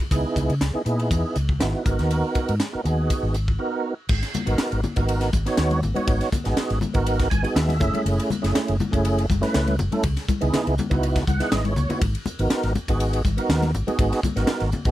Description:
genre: electric jazz fusion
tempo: 121 BPM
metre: 4/4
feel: straight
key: G# minor from 4.1 s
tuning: A4 = 442 Hz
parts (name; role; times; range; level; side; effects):
- tonewheel organ; accompaniment; 0.1-14.9 s; A3 to G#5; -24 LUFS; right 2 dB; slow rotary speaker, overdrive, chorus vibrato
- vintage muted fingered electric bass; bass; 0.1-14.9 s; F#1 to Db3; -24 LUFS; equal; none
- crisp fusion drum kit; drums; 0.1-14.9 s; crash cymbal, hi-hat, kick drum, ride cymbal, snare drum; -26 LUFS; equal; none
- congas; percussion; 4.3-14.9 s; none; -29 LUFS; left 4 dB; none
room: little or no reverb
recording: none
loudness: -20 LUFS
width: side -14 dB against mid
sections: 0.0-4.1 A section; 4.1-14.9 B section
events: break 3.6-4.1; tonewheel organ fill 7.1-8.1, 11.0-12.0; drum fill 11.5-12.0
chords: 0.1 Dbm9; 1.9 Abm9; 4.1 G#m9; 7.8 F#m9; 10.0 C#m9; 12.0 G#m9

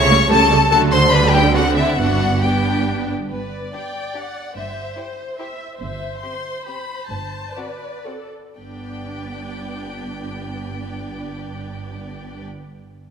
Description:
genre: quick classical-period movement for string orchestra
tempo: 113-147 BPM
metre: 3/4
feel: rubato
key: G major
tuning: A4 = 440 Hz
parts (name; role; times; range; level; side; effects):
- rich chamber violin section; melody; 0.0-12.4 s; B4 to C#6; -23 LUFS; left 4 dB; none
- rich chamber violin section; second line; 0.0-12.4 s; C4 to D5; -23 LUFS; left 2 dB; none
- warm chamber cello section; bass; 0.0-12.4 s; G2 to D3; -24 LUFS; right 2 dB; none
- warm chamber double bass section; bass; 0.0-12.4 s; G1 to D2; -25 LUFS; right 4 dB; none
- rich studio viola section; accompaniment; 0.1-12.4 s; F#3 to E5; -25 LUFS; right 2 dB; none
room: wet concert hall reverb, RT60 1.8 s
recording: none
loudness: -16 LUFS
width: side -7 dB against mid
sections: 0.0-3.3 A section; 3.3-8.6 B section; 8.6-11.7 C section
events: slowing down 5.2-8.6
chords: 0.0 A7/C#; 0.7 D; 1.1 G/D; 1.6 D7; 2.0 G; 4.6 C/G; 7.1 D7(no3)/G; 8.6 G

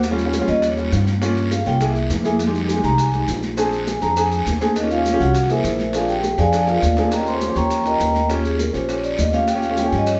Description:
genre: Afro-Cuban jazz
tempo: 203 BPM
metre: 4/4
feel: straight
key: Eb mixolydian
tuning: A4 = 440 Hz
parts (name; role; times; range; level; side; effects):
- dark baby grand piano; accompaniment; 0.0-10.1 s; G3 to G#4; -26 LUFS; equal; none
- upright bass; bass; 0.0-10.2 s; Bb1 to G2; -24 LUFS; equal; none
- bongos; percussion; 0.0-10.2 s; none; -34 LUFS; equal; none
- congas; percussion; 0.0-10.2 s; none; -32 LUFS; equal; none
- guiro; percussion; 0.0-10.2 s; none; -38 LUFS; equal; none
- maracas; percussion; 0.0-10.2 s; none; -38 LUFS; equal; none
- vibraphone with soft mallets; melody; 0.3-10.2 s; Eb4 to Db6; -23 LUFS; equal; none
room: moderate studio reverb, RT60 0.9 s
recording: band playing live in one room, nothing above 8.0 kHz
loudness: -19 LUFS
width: mono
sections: 0.0-7.1 A section; 7.1-10.2 A section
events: vibraphone solo 0.0-10.2; drum fill 6.7-7.1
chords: 0.0 Eb7; 1.2 Gm7b5; 1.8 Caug7; 2.4 Fm7; 3.6 Bb7; 4.8 Eb7; 5.3 Caug7; 5.9 Bb7; 7.1 Eb7

